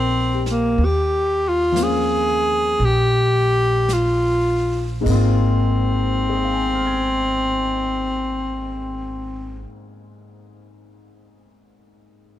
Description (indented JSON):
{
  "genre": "jazz ballad",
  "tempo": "49-62 BPM",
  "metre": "4/4",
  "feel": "swing 66% on 8ths",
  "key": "Ab major",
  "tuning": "A4 = 441 Hz",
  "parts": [
    { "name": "breathy tenor saxophone", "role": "melody", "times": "0.0-9.7 s", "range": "Bb3 to Ab4", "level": "-20 LUFS", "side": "left 1 dB", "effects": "none" },
    { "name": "warm upright piano", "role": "accompaniment", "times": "0.0-12.4 s", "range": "Ab2 to Ab6", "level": "-28 LUFS", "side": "left 4 dB", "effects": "none" },
    { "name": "upright bass", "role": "bass", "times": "0.0-9.6 s", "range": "Ab1 to Eb2", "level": "-22 LUFS", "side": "equal", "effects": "none" },
    { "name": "jazz brush drum kit", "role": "drums", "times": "0.5-6.0 s", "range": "brushed snare drum, crash cymbal, hi-hat, kick drum, snare drum", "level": "-32 LUFS", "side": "right 2 dB", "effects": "none" }
  ],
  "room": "little or no reverb",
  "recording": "dark, warm production",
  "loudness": "-17 LUFS",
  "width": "side -12 dB against mid",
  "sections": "0.8-5.1 A section; 5.1-9.9 B section",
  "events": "slowing down 0.0-5.1",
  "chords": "0.0 Eb13; 5.1 Ab69"
}